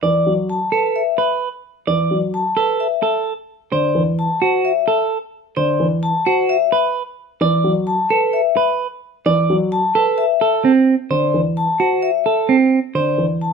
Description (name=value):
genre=classical, minimalist pattern music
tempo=130 BPM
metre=4/4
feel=straight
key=D mixolydian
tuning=A4 = 443 Hz
part: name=vibraphone with medium hard mallets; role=melody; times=0.0-13.5 s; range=B4 to A5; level=-19 LUFS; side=left 7 dB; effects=none
part: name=dark concert grand piano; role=accompaniment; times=0.0-13.5 s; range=D3 to F#3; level=-19 LUFS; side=equal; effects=none
part: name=clean electric guitar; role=arpeggios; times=0.0-13.2 s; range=C4 to D5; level=-17 LUFS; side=right 6 dB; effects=none
room=light reverb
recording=minimal, uncompressed stereo recording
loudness=-15 LUFS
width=side -5 dB against mid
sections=0.0-13.5 A section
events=none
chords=0.0 Bm7; 2.8 D7; 6.5 Bm7; 10.2 D7(no3)